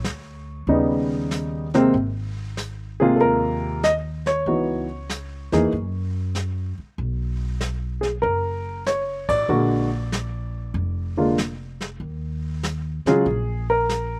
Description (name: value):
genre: jazz piano trio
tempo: 95 BPM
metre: 4/4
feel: swing 68% on 8ths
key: Eb minor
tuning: A4 = 440 Hz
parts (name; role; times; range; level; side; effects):
- dark baby grand piano; melody; 0.0-14.2 s; C3 to Eb5; -22 LUFS; equal; slapback echo
- upright bass; bass; 0.0-14.2 s; F1 to Gb2; -30 LUFS; equal; none
- vintage brush drum kit; drums; 0.0-14.2 s; brushed snare drum, hi-hat, kick drum, ride cymbal, snare drum; -34 LUFS; equal; none
room: little or no reverb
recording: recorded outdoors, with no room sound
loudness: -23 LUFS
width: mono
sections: 0.0-14.2 A section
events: band accent 9.2-9.5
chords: 0.0 N.C.; 0.7 Eb7b13; 1.9 Ab69; 4.5 Dbm11; 5.7 Gb5; 7.0 B5; 9.5 Bb7; 12.0 Ebsus4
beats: 0.05 0.68 1.31 | 1.94 2.57 3.20 3.83 | 4.46 5.09 5.72 6.35 | 6.98 7.61 8.24 8.87 | 9.49 10.12 10.75 11.38 | 12.01 12.63 13.26 13.89